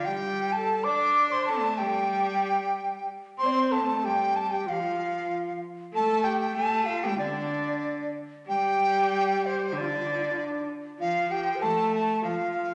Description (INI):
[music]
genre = chinese traditional, Chinese chamber ensemble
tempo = 95 BPM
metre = 2/4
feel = straight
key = unclear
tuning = A4 = 440 Hz
[part]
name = mellow hollow dizi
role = melody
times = 0.0-12.7 s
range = C5 to D6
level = -29 LUFS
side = equal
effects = none
[part]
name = bright cello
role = second line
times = 0.0-12.7 s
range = D3 to D4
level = -35 LUFS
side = equal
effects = none
[part]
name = bright reedy low xiao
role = second line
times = 0.0-12.7 s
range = C4 to D5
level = -34 LUFS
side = equal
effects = none
[sound]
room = wet recital hall reverb, RT60 1.6 s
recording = nothing above 10.8 kHz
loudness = -27 LUFS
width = mono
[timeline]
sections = 0.0-8.5 A section; 8.5-12.7 B section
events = none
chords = none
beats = 0.22 | 0.85 1.48 | 2.11 2.75 | 3.39 4.03 | 4.67 5.30 | 5.93 6.55 | 7.19 7.83 | 8.47 9.11 | 9.74 10.37 | 10.99 11.61 | 12.23